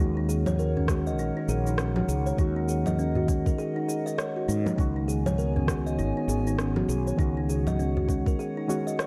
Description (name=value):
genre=organic downtempo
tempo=100 BPM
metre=4/4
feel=swing 60% on 16ths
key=Eb minor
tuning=A4 = 442 Hz
part: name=muted felt-like synth keys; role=accompaniment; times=0.0-9.1 s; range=Eb3 to Gb4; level=-34 LUFS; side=equal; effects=chorus, sidechain pumping, delay
part: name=warbly tape-like pad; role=sustained chords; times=0.3-9.1 s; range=Cb4 to Ab5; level=-37 LUFS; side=equal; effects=chorus, built-in reverb, sidechain pumping
part: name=kalimba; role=arpeggios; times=0.0-9.1 s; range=Bb3 to Eb5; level=-34 LUFS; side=equal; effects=delay
part: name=mellow fretless electric bass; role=bass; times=0.0-8.3 s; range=Ab1 to Ab2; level=-30 LUFS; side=equal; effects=sidechain pumping
part: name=electronic cabasa, congas and rim click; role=drums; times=0.0-9.1 s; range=none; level=-35 LUFS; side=equal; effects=none
part: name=udu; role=percussion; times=0.8-8.1 s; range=none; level=-35 LUFS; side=equal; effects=none
part: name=electronic kick drum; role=drums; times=0.9-8.4 s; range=none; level=-29 LUFS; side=equal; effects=none
room=light reverb, digital ambience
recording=dark, warm production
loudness=-27 LUFS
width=mono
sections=0.0-9.1 A section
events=none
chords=0.0 Ebm7; 4.8 Db7sus4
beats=0.59 1.19 1.79 | 2.39 2.99 3.59 4.19 | 4.79 5.39 5.99 6.59 | 7.19 7.79 8.39 8.99